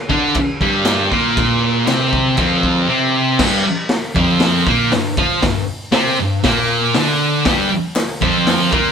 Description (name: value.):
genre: garage rock duo or trio.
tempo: 118 BPM.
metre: 4/4.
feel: straight.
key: unclear.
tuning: A4 = 440 Hz.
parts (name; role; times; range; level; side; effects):
thick fuzz guitar; riff; 0.1-8.9 s; F2 to F4; -14 LUFS; equal; distortion.
raw garage drum kit; drums; 0.1-8.8 s; crash cymbal, hi-hat, kick drum, snare drum; -19 LUFS; left 1 dB; none.
group handclap; percussion; 0.9-2.5, 8.0-8.1 s; none; -30 LUFS; left 2 dB; none.
room: moderate stone room reverb, RT60 1.0 s.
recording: band playing live in one room.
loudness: -13 LUFS.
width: side -7 dB against mid.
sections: 0.0-3.4 A section; 3.4-8.9 B section.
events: none.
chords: 0.0 G5.